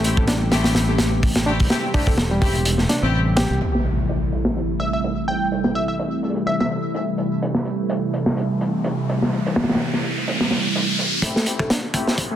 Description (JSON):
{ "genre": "breakbeat, breaks", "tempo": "126 BPM", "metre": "4/4", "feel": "swing 55% on 16ths", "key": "A minor", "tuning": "A4 = 440 Hz", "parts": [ { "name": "phased analog pad", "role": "sustained chords", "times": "0.0-12.4 s", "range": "C3 to G4", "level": "-24 LUFS", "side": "right 1 dB", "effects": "phaser, chorus, sidechain pumping" }, { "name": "barky reed electric piano", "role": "riff", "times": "0.0-3.6, 11.2-12.4 s", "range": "G3 to A4", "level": "-27 LUFS", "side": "equal", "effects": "vintage 12-bit sampler grit, low-pass filter, digital delay" }, { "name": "clear symphonic string section", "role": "stabs", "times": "0.0-3.2, 11.2-12.1 s", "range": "A3 to G4", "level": "-27 LUFS", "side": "left 3 dB", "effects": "low-pass filter, digital delay" }, { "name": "overdriven fingered electric bass", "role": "bass", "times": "0.0-3.6 s", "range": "E1 to C2", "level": "-21 LUFS", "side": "equal", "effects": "tube saturation" }, { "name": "crunchy breakbeat drum kit", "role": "drums", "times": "0.0-12.3 s", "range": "hi-hat, kick drum, snare drum", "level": "-22 LUFS", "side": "equal", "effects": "high-pass filter on kick, low-pass filter on kick, high-pass filter on hats, low-pass filter on hats, high-pass filter on snare, low-pass filter on snare, high-pass filter on room, low-pass filter on room" }, { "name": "impact and riser", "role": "sound effects", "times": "3.6-12.4 s", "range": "none", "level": "-26 LUFS", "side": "equal", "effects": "none" }, { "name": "plucky unison lead", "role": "melody", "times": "4.8-6.7 s", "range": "E5 to G5", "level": "-26 LUFS", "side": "equal", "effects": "small speaker sound, digital delay" } ], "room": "moderate plate reverb, RT60 1.7 s, small room ambience", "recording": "dense, heavily limited modern master", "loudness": "-18 LUFS", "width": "side -10 dB against mid", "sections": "0.0-3.6 A section; 3.6-11.2 B section; 11.2-12.4 C section", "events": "impact 3.6-5.5; riser 8.5-11.2; build-up 11.2-12.4; filter sweep on reed electric piano 11.2-12.4; filter sweep on string section 11.2-12.4", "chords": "0.0 Am7" }